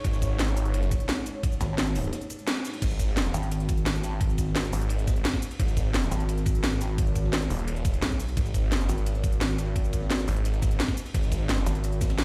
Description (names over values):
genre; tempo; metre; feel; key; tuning
dark technical drum and bass; 173 BPM; 4/4; straight; unclear; A4 = 440 Hz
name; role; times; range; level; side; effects
dark analog pad; sustained chords; 0.0-2.8 s; G#3 to C#5; -40 LUFS; equal; chorus, sidechain pumping
snarling distorted saw bass; bass; 0.0-11.7 s; D#1 to G#1; -30 LUFS; equal; distortion, overdrive, sidechain pumping
crunchy breakbeat drum kit; drums; 0.0-12.2 s; hi-hat, ride cymbal, snare drum; -43 LUFS; equal; high-pass filter on cymbals, high-pass filter on hats, high-pass filter on snare, high-pass filter on room
drum and bass drum kit; drums; 0.0-12.2 s; crash cymbal, hi-hat, shaker, snare drum; -33 LUFS; equal; none
electronic kick drum; drums; 0.0-12.1 s; none; -30 LUFS; equal; none
pulsing pluck wobble bass; bass; 1.6-12.2 s; G#1 to B1; -30 LUFS; equal; distortion, chorus
room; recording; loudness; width
little or no reverb; played on a big sound system in a bare room, stone room reverb; -27 LUFS; mono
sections
0.0-2.8 A section; 2.8-12.2 A section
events
drop 0.0-2.8, 2.8-12.2; break 2.1-2.8; band accent 2.5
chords
0.0 G#5; 2.8 N.C.